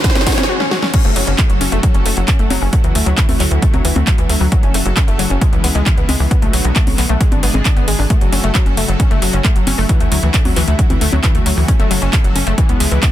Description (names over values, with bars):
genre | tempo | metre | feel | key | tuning
uplifting trance | 134 BPM | 4/4 | straight | F# minor | A4 = 440 Hz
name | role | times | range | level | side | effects
lush unison pad | sustained chords | 0.0-13.1 s | B2 to A4 | -23 LUFS | equal | chorus, sidechain pumping
wide unison pluck | arpeggios | 0.0-13.1 s | E3 to F#4 | -21 LUFS | left 4 dB | sidechain pumping, dub echo
big-room dance drum kit | drums | 0.0-13.1 s | congas, crash cymbal, handclaps, hi-hat, snare drum | -20 LUFS | equal | none
electronic kick drum | drums | 0.0-13.1 s | none | -14 LUFS | equal | none
riser | sound effects | 0.0-0.5 s | none | -25 LUFS | right 2 dB | none
tight sequencer bass | bass | 0.2-13.0 s | F#1 to D2 | -17 LUFS | equal | sidechain pumping, high-pass filter
room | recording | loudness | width
little or no reverb | dense, heavily limited modern master | -12 LUFS | side -12 dB against mid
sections
0.9-13.1 A section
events
drum fill 0.0-0.5, 0.6-0.9; riser 0.0-0.5; break 0.5-0.9; drop 0.9-13.1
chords
0.0 G#dim; 0.9 F#m; 2.7 Dadd9; 4.5 F#m; 5.4 C#m7; 6.3 Bm7; 7.2 G#dim; 8.1 F#m; 9.9 Dadd9; 11.7 F#m; 12.6 C#m7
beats
0.04 0.49 | 0.94 1.38 1.83 2.28 | 2.73 3.17 3.62 4.07 | 4.52 4.97 5.41 5.86 | 6.31 6.76 7.21 7.65 | 8.10 8.55 9.00 9.44 | 9.89 10.34 10.79 11.23 | 11.68 12.13 12.58 13.03